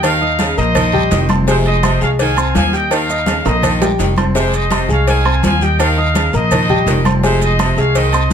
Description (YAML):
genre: latin, salsa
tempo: 167 BPM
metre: 4/4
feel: straight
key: F minor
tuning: A4 = 440 Hz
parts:
  - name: bright trumpet section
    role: melody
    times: 0.0-8.3 s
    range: Ab4 to Ab5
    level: -18 LUFS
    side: equal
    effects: none
  - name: edgy saxophone section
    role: second line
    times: 0.0-8.1 s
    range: C3 to F3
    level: -22 LUFS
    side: equal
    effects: none
  - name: warm grand piano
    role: accompaniment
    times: 0.0-8.3 s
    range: G3 to G6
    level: -19 LUFS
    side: left 3 dB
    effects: none
  - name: upright bass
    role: bass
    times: 0.0-8.3 s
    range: F1 to Eb2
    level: -16 LUFS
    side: right 1 dB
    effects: none
  - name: agogo bells and timbales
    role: percussion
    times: 0.0-8.3 s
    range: none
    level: -23 LUFS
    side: right 8 dB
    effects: none
  - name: claves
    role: percussion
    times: 0.0-8.3 s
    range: none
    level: -33 LUFS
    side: left 4 dB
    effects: none
  - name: congas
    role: percussion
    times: 0.0-8.3 s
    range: none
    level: -22 LUFS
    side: left 2 dB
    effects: none
  - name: cowbell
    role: percussion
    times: 0.0-8.1 s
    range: none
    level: -24 LUFS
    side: left 6 dB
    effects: none
  - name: guiro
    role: percussion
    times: 0.0-8.3 s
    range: none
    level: -32 LUFS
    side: left 4 dB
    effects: none
  - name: maracas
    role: percussion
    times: 0.0-8.3 s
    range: none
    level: -30 LUFS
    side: right 9 dB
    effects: none
room: light reverb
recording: close, detailed microphones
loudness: -12 LUFS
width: side -8 dB against mid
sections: 0.0-8.3 A section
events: drum fill 3.3-4.4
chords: 0.0 Eb; 1.5 Fm7; 2.9 Eb; 4.4 Fm7; 5.8 Eb; 7.2 Fm7